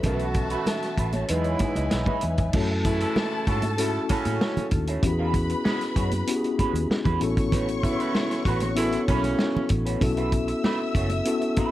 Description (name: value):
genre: lush 1970s-style soul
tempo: 96 BPM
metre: 4/4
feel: straight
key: F# dorian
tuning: A4 = 440 Hz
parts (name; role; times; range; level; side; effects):
- dark studio string section; second line; 0.0-11.7 s; D#4 to E6; -33 LUFS; left 1 dB; none
- mellow tine electric piano; accompaniment; 0.0-11.7 s; E3 to E5; -27 LUFS; left 3 dB; medium stereo tremolo
- electric guitar through a small old amp; riff; 0.0-11.7 s; G#3 to C#5; -34 LUFS; right 5 dB; wah
- clear horn section; stabs; 0.0-9.7 s; F#2 to A4; -31 LUFS; right 3 dB; none
- vintage muted fingered electric bass; bass; 0.0-11.6 s; F#1 to A2; -28 LUFS; equal; none
- warm soul drum kit; drums; 0.0-11.7 s; crash cymbal, hi-hat, kick drum, snare drum; -27 LUFS; equal; none
- congas; percussion; 0.0-11.7 s; none; -32 LUFS; right 2 dB; none
room: light reverb, studio ambience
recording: dark, warm production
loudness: -22 LUFS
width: side -14 dB against mid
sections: 0.0-2.5 A section; 2.5-11.7 B section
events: tine electric piano solo 0.0-2.5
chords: 0.0 B7sus4; 1.3 Emaj9; 2.5 F#m7; 5.0 E69; 7.2 A69; 10.0 B7sus4